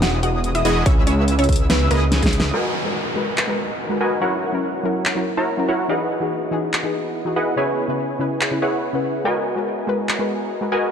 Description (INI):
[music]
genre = future bass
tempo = 143 BPM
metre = 4/4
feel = half-time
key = G# minor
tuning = A4 = 439 Hz
[part]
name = mallet-like synth pluck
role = melody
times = 0.0-2.5 s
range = G#3 to F#5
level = -24 LUFS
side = right 1 dB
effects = wide subtle chorus, sidechain pumping, dub echo
[part]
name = airy dreamy lead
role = arpeggios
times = 0.0-2.5 s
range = D#6 to E6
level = -30 LUFS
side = equal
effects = chorus, sidechain pumping
[part]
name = supersaw stab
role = riff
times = 0.0-10.9 s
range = B3 to A#5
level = -23 LUFS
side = equal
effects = sidechain pumping, low-pass filter, tape echo
[part]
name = wide detuned saw bass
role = bass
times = 0.0-2.5 s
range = E1 to C#2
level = -19 LUFS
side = equal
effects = chorus, sidechain pumping
[part]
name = big-room dance drum kit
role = drums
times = 0.0-10.2 s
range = handclaps, hi-hat, snare drum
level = -24 LUFS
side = equal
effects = studio reverb
[part]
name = electronic kick drum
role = drums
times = 0.9-2.3 s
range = none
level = -18 LUFS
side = equal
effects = studio reverb
[part]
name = soft round pluck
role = accompaniment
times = 2.5-10.7 s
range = C#3 to B4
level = -24 LUFS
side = left 2 dB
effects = chorus, sidechain pumping, tape echo
[part]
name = ethereal airy pad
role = sustained chords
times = 3.4-10.9 s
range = G#3 to A#5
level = -31 LUFS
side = right 1 dB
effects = ensemble chorus, built-in reverb, sidechain pumping
[part]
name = downlifter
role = sound effects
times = 2.5-5.9 s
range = none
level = -29 LUFS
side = equal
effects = none
[sound]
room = light reverb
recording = none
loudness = -18 LUFS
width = side -7 dB against mid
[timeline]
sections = 0.0-2.5 A section; 2.5-10.9 B section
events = drop 0.0-2.5; drum fill 2.1-2.5; band accent 2.4; filter sweep on ambient pad 2.5-10.9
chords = 0.0 Emaj9; 0.9 C#m7; 2.5 G#m9; 4.2 F#7; 5.9 Emaj9; 7.6 C#m7; 9.3 G#m9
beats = 0.02 0.44 | 0.86 1.28 1.70 2.12 | 2.54 2.96 3.38 3.80 | 4.22 4.64 5.05 5.47 | 5.89 6.31 6.73 7.15 | 7.57 7.99 8.41 8.83 | 9.25 9.67 10.09 10.51